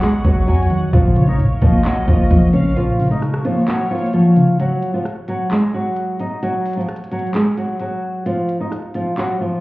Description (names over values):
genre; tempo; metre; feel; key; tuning
hip hop, trap; 131 BPM; 4/4; half-time; Bb phrygian; A4 = 440 Hz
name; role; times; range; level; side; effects
flamenco guitar; melody; 0.0-9.6 s; F3 to Eb5; -19 LUFS; equal; low-pass filter
warm studio violin section; second line; 0.0-4.6 s; Db5 to Ab5; -32 LUFS; left 2 dB; tape echo
warbly dusty pluck; accompaniment; 0.0-4.6 s; Bb2 to B3; -17 LUFS; equal; chorus, low-pass filter
clear woodwind section; sustained chords; 0.0-4.6 s; Bb4 to Db6; -34 LUFS; equal; none
trap drum kit; drums; 0.0-9.3 s; handclaps, hi-hat, kick drum, rim click; -19 LUFS; equal; none
warm 808-style bass; bass; 0.2-2.8 s; Bb1 to Bb2; -17 LUFS; equal; none
room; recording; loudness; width
light reverb; heard muffled through a wall, club reverb, EQ; -15 LUFS; side -20 dB against mid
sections
0.0-4.6 A section; 4.6-9.6 B section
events
break 2.8-4.6, 4.6-9.6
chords
0.0 Badd9; 0.9 Bbm; 4.6 N.C.; 8.3 Ebmadd9/F (rootless)